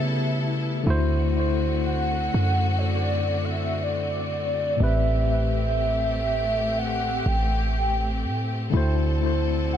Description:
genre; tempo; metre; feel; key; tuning
R&B; 61 BPM; 4/4; swing 58% on 16ths; A dorian; A4 = 440 Hz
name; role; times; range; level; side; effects
warm velvety synth lead; melody; 0.0-9.8 s; C#5 to G5; -27 LUFS; right 1 dB; chorus, tape echo
tine electric piano; accompaniment; 0.0-9.8 s; A2 to C5; -27 LUFS; left 3 dB; medium stereo tremolo, tape echo
warm studio string section; sustained chords; 0.0-9.8 s; C#3 to A4; -31 LUFS; left 1 dB; none
warm 808-style bass; bass; 0.0-9.8 s; A1 to C#3; -25 LUFS; right 1 dB; none
room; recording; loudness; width
light reverb; echo-heavy mix; -22 LUFS; side -10 dB against mid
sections
0.0-9.8 A section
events
none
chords
0.0 A13/C#; 0.9 D7; 4.8 Am7; 8.7 D7

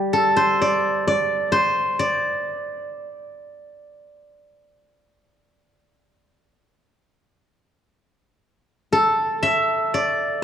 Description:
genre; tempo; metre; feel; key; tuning
chinese traditional, Chinese solo plucked strings; 56-65 BPM; 4/4; rubato; D shang mode; A4 = 439 Hz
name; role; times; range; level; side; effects
steel-string zither; solo; 0.0-10.4 s; G3 to E5; -19 LUFS; equal; none
room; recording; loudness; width
moderate concert hall reverb, RT60 2.2 s; dark, warm production; -18 LUFS; side -9 dB against mid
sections
0.0-7.9 A section; 7.9-10.4 B section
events
none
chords
none

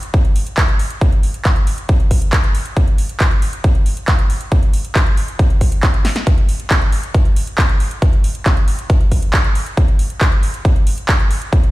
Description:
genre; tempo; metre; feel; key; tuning
trance; 137 BPM; 4/4; straight; none; none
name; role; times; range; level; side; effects
big-room dance drum kit; drums; 0.0-11.7 s; handclaps, hi-hat, snare drum; -22 LUFS; equal; small room reverb
electronic kick drum; drums; 0.1-11.6 s; none; -13 LUFS; equal; small room reverb
room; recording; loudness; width
digital ambience; played on a big sound system in a bare room, stone room reverb; -13 LUFS; side -18 dB against mid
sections
0.0-11.7 A section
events
drum fill 6.1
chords
none

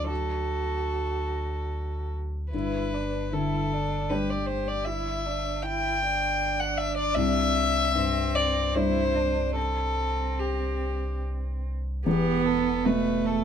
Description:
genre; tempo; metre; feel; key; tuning
neoclassical piano and strings; 72-80 BPM; 3/4; rubato; unclear; A4 = 444 Hz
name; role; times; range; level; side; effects
warm violin; melody; 0.0-13.4 s; G4 to G5; -28 LUFS; left 3 dB; none
dark cello; second line; 0.0-13.4 s; A3 to G4; -31 LUFS; right 9 dB; none
felt-muted upright piano; accompaniment; 0.0-13.4 s; C2 to D5; -30 LUFS; left 3 dB; none
punchy sub bass; bass; 0.0-13.4 s; E1 to D2; -32 LUFS; equal; none
room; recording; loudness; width
light reverb; minimal, uncompressed stereo recording; -24 LUFS; side -8 dB against mid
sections
0.0-12.1 A section; 12.1-13.4 B section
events
none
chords
0.0 D; 2.5 G; 7.2 Csus2; 12.1 Em

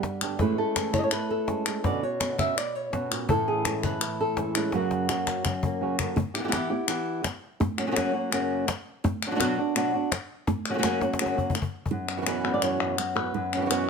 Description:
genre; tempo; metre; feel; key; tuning
flamenco; 167 BPM; 4/4; straight; unclear; A4 = 440 Hz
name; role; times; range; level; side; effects
flamenco guitar; melody; 0.0-13.9 s; F#2 to E5; -27 LUFS; equal; none
flamenco guitar; stabs; 0.0-6.2, 11.9-13.9 s; F#2 to G4; -31 LUFS; right 8 dB; none
cajon; percussion; 0.0-11.9 s; none; -30 LUFS; left 3 dB; none
palmas hand claps; percussion; 0.2-13.9 s; none; -31 LUFS; left 6 dB; none
room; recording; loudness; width
light reverb; close, detailed microphones; -25 LUFS; side -5 dB against mid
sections
0.0-6.2 A section; 6.2-11.9 B section; 11.9-13.9 C section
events
drum fill 4.7-6.2, 11.0-11.9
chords
0.4 Amaj7; 1.8 Bmadd9; 3.3 Amaj7; 4.7 F#; 6.2 Em; 7.6 F#; 9.0 Bm; 10.5 F#; 11.9 F#7sus4

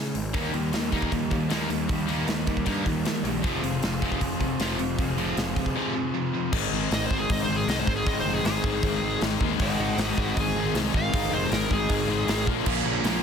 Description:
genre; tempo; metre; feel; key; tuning
punk rock; 156 BPM; 4/4; straight; Ab major; A4 = 441 Hz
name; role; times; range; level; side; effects
fuzz picked electric bass; bass; 0.0-13.2 s; F1 to Eb3; -31 LUFS; right 1 dB; overdrive
big rock drum kit; drums; 0.1-13.1 s; crash cymbal, hi-hat, kick drum, snare drum; -29 LUFS; equal; none
distorted electric guitar; riff; 0.3-13.2 s; F2 to Eb4; -30 LUFS; left 13 dB; distortion
fuzz guitar; riff; 0.3-13.2 s; Ab2 to Ab4; -31 LUFS; right 2 dB; distortion
tight distorted guitar; riff; 0.3-6.5, 12.7-13.2 s; F2 to Db4; -32 LUFS; right 14 dB; distortion
smooth overdriven lead guitar; melody; 6.9-12.5 s; Gb4 to Gb5; -29 LUFS; right 1 dB; tape echo
room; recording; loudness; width
light reverb; dense, heavily limited modern master; -23 LUFS; side -7 dB against mid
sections
0.0-6.5 A section; 6.5-13.2 B section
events
lead electric guitar solo 6.5-13.2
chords
0.3 Eb; 3.4 Fm; 6.5 Ab; 12.5 Bbm

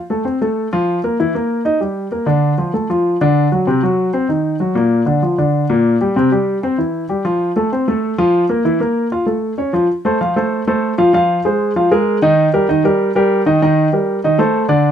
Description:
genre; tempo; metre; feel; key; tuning
jazz; 193 BPM; 4/4; straight; F major; A4 = 441 Hz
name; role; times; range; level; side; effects
warm grand piano; solo; 0.1-14.9 s; Bb2 to F5; -13 LUFS; equal; none
room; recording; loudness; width
moderate club reverb, RT60 0.5 s; none; -13 LUFS; side -9 dB against mid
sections
0.0-9.9 A section; 9.9-14.9 B section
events
none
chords
0.0 F; 1.2 Eb5; 1.8 Gm; 2.4 Dm; 3.7 Ebm6; 4.9 Gm7; 6.2 C; 7.4 F; 8.6 Bb5; 9.3 Aaug; 9.9 F; 11.1 Fm; 11.8 Bb5; 12.4 Eb; 14.2 Cm69

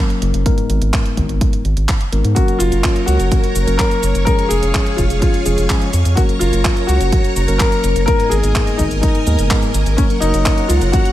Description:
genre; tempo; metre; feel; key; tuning
italo disco; 126 BPM; 4/4; straight; F# major; A4 = 439 Hz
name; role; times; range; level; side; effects
mellow tine electric piano; stabs; 0.0-11.1 s; G#2 to A#4; -22 LUFS; moving between left 7 dB and right 1 dB; auto-pan, low-pass filter
clean 12-bit digital drum machine; drums; 0.1-11.1 s; cabasa, handclaps, hi-hat; -24 LUFS; right 1 dB; small room ambience
round analog bass; bass; 0.2-10.9 s; E#1 to G#2; -16 LUFS; equal; tube saturation
electronic kick drum; drums; 0.5-11.0 s; none; -16 LUFS; equal; small room ambience
dark baby grand piano; melody; 2.3-11.1 s; C#4 to A#4; -20 LUFS; left 2 dB; digital delay
string machine, full ensemble; sustained chords; 2.4-11.1 s; G#4 to C#6; -23 LUFS; equal; ensemble chorus
room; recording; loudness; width
digital ambience; none; -13 LUFS; side -14 dB against mid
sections
0.0-11.1 A section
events
none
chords
0.5 G#madd9; 2.4 F#; 4.3 C#/E#; 6.2 F#; 8.1 G#madd9; 10.0 F#

